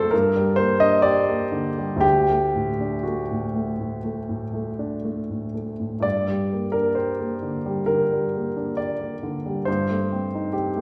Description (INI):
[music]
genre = classical, romantic character piece for solo piano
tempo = 58-69 BPM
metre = 4/4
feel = rubato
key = G minor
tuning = A4 = 440 Hz
[part]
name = warm grand piano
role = solo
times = 0.0-10.8 s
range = D2 to Eb5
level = -23 LUFS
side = equal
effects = none
[sound]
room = wet recital hall reverb, RT60 1.3 s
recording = heard from further back in the room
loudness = -24 LUFS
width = mono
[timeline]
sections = 0.0-10.8 A section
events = none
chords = 0.1 Gm; 2.0 D; 6.0 Gm; 9.7 Am7b5/G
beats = 0.12 1.04 | 2.04 3.06 4.05 5.04 | 6.04 6.97 7.88 8.78 | 9.67 10.55